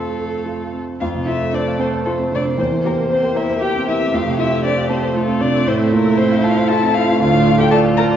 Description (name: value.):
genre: quick classical-period movement for piano quintet.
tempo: 116 BPM.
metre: 3/4.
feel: rubato.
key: F major.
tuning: A4 = 436 Hz.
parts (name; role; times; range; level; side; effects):
muted violin; melody; 0.0-8.0 s; A4 to Bb5; -22 LUFS; left 5 dB; none.
muted cello; second line; 0.0-8.1 s; A3 to Bb4; -23 LUFS; right 3 dB; none.
muted violin; second line; 0.0-8.2 s; D4 to C5; -24 LUFS; equal; none.
clear grand piano; accompaniment; 0.0-8.2 s; D2 to Bb5; -18 LUFS; right 1 dB; none.
muted viola; accompaniment; 0.0-8.2 s; A3 to Bb3; -24 LUFS; right 4 dB; none.
room: wet recital hall reverb, RT60 1.5 s.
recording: heard from further back in the room, nothing above 7.5 kHz.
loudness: -15 LUFS.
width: side -9 dB against mid.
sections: 0.0-1.0 A section; 1.0-8.2 B section.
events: none.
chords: 0.0 F; 2.6 C7/E; 4.1 F; 5.7 F/A; 7.2 Dm.